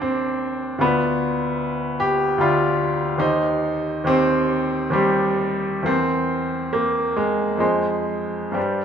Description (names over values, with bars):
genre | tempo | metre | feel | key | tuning
classical, romantic character piece for solo piano | 60-77 BPM | 3/4 | rubato | C minor | A4 = 440 Hz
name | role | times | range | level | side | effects
bright upright piano | solo | 0.0-8.8 s | D2 to C6 | -19 LUFS | equal | none
room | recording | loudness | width
moderate recital hall reverb, RT60 1.4 s | close, detailed microphones | -19 LUFS | side -7 dB against mid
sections
0.0-8.8 A section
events
none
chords
0.0 Cm/Eb; 0.8 Bdim/D; 3.2 Cm/Eb; 5.9 C7/E; 7.6 Fm7